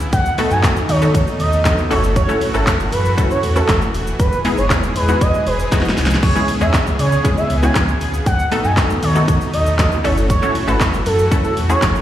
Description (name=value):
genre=dance-pop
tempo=118 BPM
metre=4/4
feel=straight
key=unclear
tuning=A4 = 442 Hz
part: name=supersaw pad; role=sustained chords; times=0.0-12.0 s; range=B2 to G#4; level=-25 LUFS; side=right 1 dB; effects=sidechain pumping, plate reverb
part: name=sub bass with octave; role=bass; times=0.0-12.0 s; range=D#1 to D#3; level=-19 LUFS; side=equal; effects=sidechain pumping
part: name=pop drum kit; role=drums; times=0.0-12.0 s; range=crash cymbal, handclaps, hi-hat, kick drum, shaker, snare drum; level=-18 LUFS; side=equal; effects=none
part: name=egg shaker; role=percussion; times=0.0-12.0 s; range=none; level=-45 LUFS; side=right 3 dB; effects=none
part: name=expressive portamento lead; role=melody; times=0.1-11.9 s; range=A4 to G#5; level=-21 LUFS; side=right 1 dB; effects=chorus, plate reverb, slapback echo, ping-pong delay
part: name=wide unison pluck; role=accompaniment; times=0.4-12.0 s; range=G#3 to A4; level=-21 LUFS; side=left 1 dB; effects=sidechain pumping, plate reverb, slapback echo
room=light reverb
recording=live gig heard through the venue's PA, recital hall reverb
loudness=-14 LUFS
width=side -12 dB against mid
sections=0.0-12.0 A section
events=drum fill 5.7-6.2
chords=0.1 B7/D#; 1.9 F#m7; 4.2 Emaj7; 6.2 C#m7; 8.3 B7/D#; 10.0 F#m7